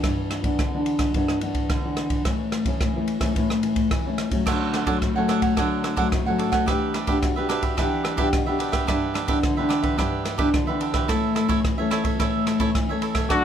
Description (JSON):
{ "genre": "samba and choro", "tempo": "109 BPM", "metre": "4/4", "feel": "straight", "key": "D major", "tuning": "A4 = 440 Hz", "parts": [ { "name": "nylon-string guitar", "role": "accompaniment", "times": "0.0-13.4 s", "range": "G2 to G4", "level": "-24 LUFS", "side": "left 2 dB", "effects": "none" }, { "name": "open jazz drum kit", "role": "drums", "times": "0.0-13.4 s", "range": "crash cymbal, kick drum, ride cymbal, rim click", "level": "-25 LUFS", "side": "right 1 dB", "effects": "none" }, { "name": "cavaquinho", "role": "accompaniment", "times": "4.5-13.4 s", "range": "D4 to F#5", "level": "-26 LUFS", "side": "right 7 dB", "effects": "none" }, { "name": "clear trumpet", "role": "second line", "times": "13.3-13.4 s", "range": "F#4", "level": "-20 LUFS", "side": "left 5 dB", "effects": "none" } ], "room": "light reverb", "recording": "close, detailed microphones", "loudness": "-21 LUFS", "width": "side -9 dB against mid", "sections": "0.0-4.5 A section; 4.5-13.4 B section", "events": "none", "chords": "0.0 G6; 2.3 A; 4.5 Dmaj7; 6.7 Em7; 8.9 G6; 11.1 A" }